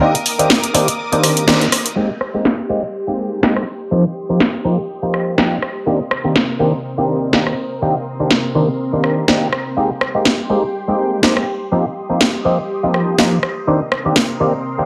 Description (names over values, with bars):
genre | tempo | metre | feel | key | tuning
filtered disco house | 123 BPM | 4/4 | swing 55% on 16ths | C minor | A4 = 441 Hz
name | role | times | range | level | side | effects
mellow clav | accompaniment | 0.0-14.9 s | Eb3 to G4 | -20 LUFS | equal | phaser, low-pass filter
string machine, full ensemble | sustained chords | 0.0-14.9 s | C4 to Eb6 | -27 LUFS | equal | phaser, ensemble chorus, low-pass filter
house drum kit | drums | 0.1-14.3 s | crash cymbal, hi-hat, rim click, snare drum | -18 LUFS | equal | low-pass filter on hats, low-pass filter on snare, low-pass filter on cymbals, low-pass filter on room
room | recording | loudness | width
moderate plate reverb, RT60 1.4 s | none | -17 LUFS | mono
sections
0.0-2.0 A section; 2.0-14.9 B section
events
band accent 1.5; filter sweep on drum 2.0-14.9; filter sweep 2.0-14.9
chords
0.0 Cm7; 2.0 Abmaj7; 3.9 Eb6; 5.9 Cm7; 9.8 Abmaj7; 11.7 Eb6; 13.7 Cm7